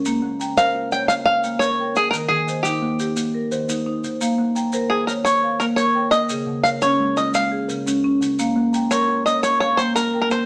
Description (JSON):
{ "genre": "southern african traditional, mbira-style interlocking cycle", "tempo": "115 BPM (dotted quarters)", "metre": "12/8", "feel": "straight", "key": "Bb dorian", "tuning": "A4 = 440 Hz", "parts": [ { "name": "kalimba", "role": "arpeggios", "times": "0.0-10.5 s", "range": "Db3 to C6", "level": "-29 LUFS", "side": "equal", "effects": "none" }, { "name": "marimba with medium mallets", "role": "arpeggios", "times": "0.0-10.5 s", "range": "Db3 to G5", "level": "-26 LUFS", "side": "equal", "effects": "none" }, { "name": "maracas", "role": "percussion", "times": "0.1-10.5 s", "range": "none", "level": "-35 LUFS", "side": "equal", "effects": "none" }, { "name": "bluegrass banjo", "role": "melody", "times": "0.6-10.5 s", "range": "G4 to G5", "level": "-21 LUFS", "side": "equal", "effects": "none" } ], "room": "moderate studio reverb, RT60 0.9 s", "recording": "none", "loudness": "-20 LUFS", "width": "mono", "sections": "0.0-10.5 A section", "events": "none", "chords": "0.1 Bbm; 2.1 Eb; 4.2 Bbm; 6.3 Db; 8.4 Bbm", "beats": "| 0.05 0.57 1.09 1.61 | 2.13 2.65 3.17 3.69 | 4.21 4.73 5.25 5.77 | 6.29 6.82 7.34 7.86 | 8.38 8.90 9.43 9.95" }